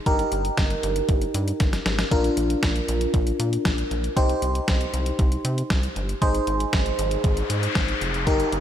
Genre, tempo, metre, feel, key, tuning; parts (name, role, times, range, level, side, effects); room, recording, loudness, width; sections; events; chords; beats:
synth-pop; 117 BPM; 4/4; straight; A4 = 438 Hz
FM electric piano; accompaniment; 0.0-8.6 s; D4 to C5; -25 LUFS; equal; chorus, phaser, slapback echo
rubbery square bass; bass; 0.1-8.6 s; F1 to C3; -27 LUFS; equal
detuned 8-bit digital drum machine; drums; 0.1-8.6 s; hi-hat, kick drum, snare drum; -24 LUFS; equal
noise sweep; sound effects; 6.9-8.6 s; -29 LUFS; left 3 dB; slapback echo
moderate concert hall reverb, RT60 2.3 s; big arena sound; -21 LUFS; side -10 dB against mid
0.0-8.6 A section
drum fill 1.6-2.1; noise sweep 6.9-8.6
0.1 Eb/G; 2.1 Bb; 4.2 Cm; 6.2 Ab
| 0.06 0.58 1.09 1.60 | 2.12 2.63 3.14 3.65 | 4.17 4.68 5.19 5.70 | 6.22 6.73 7.24 7.76 | 8.27